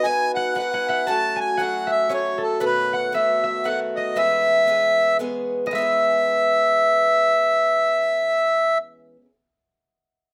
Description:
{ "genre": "celtic folk, Celtic waltz", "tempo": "116 BPM", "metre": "3/4", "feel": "swing 58% on 8ths", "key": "E major", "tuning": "A4 = 440 Hz", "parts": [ { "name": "accordion", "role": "melody", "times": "0.0-8.8 s", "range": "A4 to A5", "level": "-21 LUFS", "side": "equal", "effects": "none" }, { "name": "concert harp", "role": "second line", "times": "0.0-8.8 s", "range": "A4 to A5", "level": "-30 LUFS", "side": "equal", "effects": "none" }, { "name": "picked acoustic archtop guitar", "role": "accompaniment", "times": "0.0-9.3 s", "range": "B2 to B4", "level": "-30 LUFS", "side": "equal", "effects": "none" } ], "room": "wet studio reverb, RT60 0.5 s", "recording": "rough home demo mix", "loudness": "-20 LUFS", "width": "mono", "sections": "0.0-5.7 A section; 5.7-8.8 B section", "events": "none", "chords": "0.0 B; 1.1 F#m; 2.6 B7; 4.2 E6", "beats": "0.04 0.56 | 1.08 1.59 2.11 | 2.63 3.14 3.66 | 4.18 4.69 5.21 | 5.72 6.24 6.76 | 7.27 7.79 8.31" }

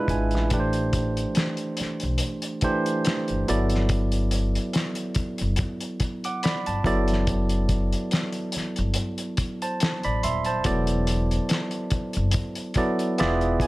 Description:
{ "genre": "R&B, neo-soul", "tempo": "71 BPM", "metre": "4/4", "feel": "swing 54% on 16ths", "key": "unclear", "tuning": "A4 = 441 Hz", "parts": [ { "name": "barky tine electric piano", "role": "accompaniment", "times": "0.0-13.7 s", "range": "E3 to D6", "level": "-26 LUFS", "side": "right 1 dB", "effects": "none" }, { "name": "upright bass", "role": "bass", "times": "0.1-13.7 s", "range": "D#1 to C#2", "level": "-25 LUFS", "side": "equal", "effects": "none" }, { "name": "cloth-damped thuddy drum kit", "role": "drums", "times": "0.1-13.7 s", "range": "hi-hat, kick drum, snare drum", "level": "-27 LUFS", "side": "left 1 dB", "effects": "none" } ], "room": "light reverb", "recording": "none", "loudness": "-22 LUFS", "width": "side -19 dB against mid", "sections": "0.0-13.7 A section", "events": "tine electric piano fill 0.0-0.5, 12.8-13.7", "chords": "0.0 E7b9; 0.5 Am7; 3.5 Gmaj9; 6.8 D69/F#; 10.7 E9sus4", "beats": "| 0.51 1.36 2.20 3.05 | 3.89 4.74 5.58 6.43 | 7.27 8.12 8.96 9.81 | 10.65 11.50 12.34 13.19" }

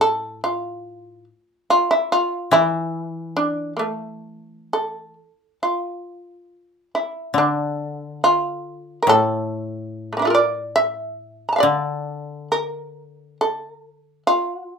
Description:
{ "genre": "japanese traditional, Japanese chamber music", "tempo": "70 BPM", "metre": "2/4", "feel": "rubato", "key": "A miyako bushi", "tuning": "A4 = 440 Hz", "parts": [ { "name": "shamisen", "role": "melody", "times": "0.0-14.8 s", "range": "A3 to Bb5", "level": "-19 LUFS", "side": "right 1 dB", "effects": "none" }, { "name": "koto", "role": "accompaniment", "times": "0.0-14.3 s", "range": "A2 to E3", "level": "-24 LUFS", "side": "left 4 dB", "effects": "none" } ], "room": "moderate small room reverb, RT60 0.5 s", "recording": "minimal, uncompressed stereo recording", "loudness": "-19 LUFS", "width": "side -6 dB against mid", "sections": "0.0-5.6 A section; 5.6-14.8 B section", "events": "none", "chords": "none", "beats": "| 0.43 1.27 | 2.12 2.97 | 3.84 4.74 | 5.64 6.51 | 7.38 8.25 | 9.10 9.94 | 10.78 11.65 | 12.54 13.42 | 14.27" }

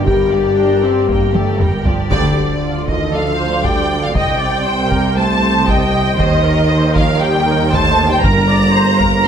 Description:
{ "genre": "cinematic, epic orchestral film score", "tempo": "118 BPM", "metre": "4/4", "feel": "straight", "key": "G minor", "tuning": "A4 = 440 Hz", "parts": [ { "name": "rich symphonic violin section", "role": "melody", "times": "0.0-9.3 s", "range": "D5 to Bb5", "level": "-22 LUFS", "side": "left 2 dB", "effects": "none" }, { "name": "rich symphonic violin section", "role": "second line", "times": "0.0-9.3 s", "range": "G4 to Bb5", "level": "-20 LUFS", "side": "equal", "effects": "none" }, { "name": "warm symphonic viola section", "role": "accompaniment", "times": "0.0-9.3 s", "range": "F3 to Eb5", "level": "-21 LUFS", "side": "equal", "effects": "none" }, { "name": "dark French horn section", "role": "sustained chords", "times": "0.0-9.3 s", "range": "D3 to G4", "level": "-20 LUFS", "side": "left 5 dB", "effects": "none" }, { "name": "clear symphonic double bass section", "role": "bass", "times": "0.0-9.3 s", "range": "G1 to Eb2", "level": "-21 LUFS", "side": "right 3 dB", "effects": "none" }, { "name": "warm studio cello section", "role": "bass", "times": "0.0-9.3 s", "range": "G2 to Eb3", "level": "-20 LUFS", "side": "right 2 dB", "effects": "none" }, { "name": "taiko ensemble", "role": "drums", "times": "0.1-9.3 s", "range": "none", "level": "-20 LUFS", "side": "equal", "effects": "none" }, { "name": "warm tuba", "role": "bass", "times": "2.1-9.3 s", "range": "G1 to Eb2", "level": "-21 LUFS", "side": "right 4 dB", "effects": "none" }, { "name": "impact", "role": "sound effects", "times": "2.1-4.2 s", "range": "none", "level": "-27 LUFS", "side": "equal", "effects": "none" }, { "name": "timpani", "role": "percussion", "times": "8.2-9.0 s", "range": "G2", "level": "-20 LUFS", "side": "left 1 dB", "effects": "none" } ], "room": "wet recital hall reverb, RT60 1.5 s", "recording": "none", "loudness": "-12 LUFS", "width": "side -8 dB against mid", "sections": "0.0-2.1 A section; 2.1-9.3 B section", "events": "drum fill 1.3-2.1; band accent 2.1-2.6; impact 2.1-4.2", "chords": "0.0 Gm; 2.1 Dm; 4.2 Cm; 6.2 Eb; 8.2 Gm", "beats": "| 0.06 0.57 1.08 1.60 | 2.11 2.62 3.13 3.64 | 4.15 4.66 5.17 5.68 | 6.19 6.71 7.21 7.73 | 8.24 8.75 9.26" }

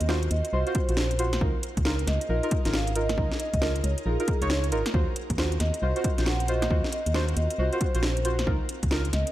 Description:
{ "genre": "UK garage, two-step garage", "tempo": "136 BPM", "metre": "4/4", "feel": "swing 63% on 16ths", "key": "Eb dorian", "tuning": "A4 = 440 Hz", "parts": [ { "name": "vibraphone with soft mallets", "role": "melody", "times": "0.0-9.3 s", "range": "Ab4 to Gb5", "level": "-33 LUFS", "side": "equal", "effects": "tape echo" }, { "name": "ethereal airy pad", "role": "sustained chords", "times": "0.0-9.3 s", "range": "C4 to C5", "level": "-40 LUFS", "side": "right 1 dB", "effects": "ensemble chorus, built-in reverb, sidechain pumping" }, { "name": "organ-like FM bass", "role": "bass", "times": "0.0-9.2 s", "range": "Ab1 to Eb2", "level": "-27 LUFS", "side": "equal", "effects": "none" }, { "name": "house drum kit", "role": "drums", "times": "0.0-9.3 s", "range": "bongos, hi-hat, snare drum", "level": "-31 LUFS", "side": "equal", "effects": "overdrive" }, { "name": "deep mellow chord stab", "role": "stabs", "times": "0.1-9.0 s", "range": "Eb4 to Db5", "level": "-31 LUFS", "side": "right 1 dB", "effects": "chorus, vintage 12-bit sampler grit" }, { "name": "electronic kick drum", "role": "drums", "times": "0.8-8.9 s", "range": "none", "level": "-28 LUFS", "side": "equal", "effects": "overdrive" } ], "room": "little or no reverb", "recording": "vinyl crackle", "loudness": "-24 LUFS", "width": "side -14 dB against mid", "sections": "0.0-9.3 A section", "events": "none", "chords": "0.0 Ebm69; 1.4 Db69; 4.9 Ebm69; 8.5 Db69", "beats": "0.09 0.53 0.97 | 1.41 1.85 2.29 2.73 | 3.18 3.62 4.06 4.50 | 4.94 5.38 5.82 6.26 | 6.71 7.15 7.59 8.03 | 8.47 8.91" }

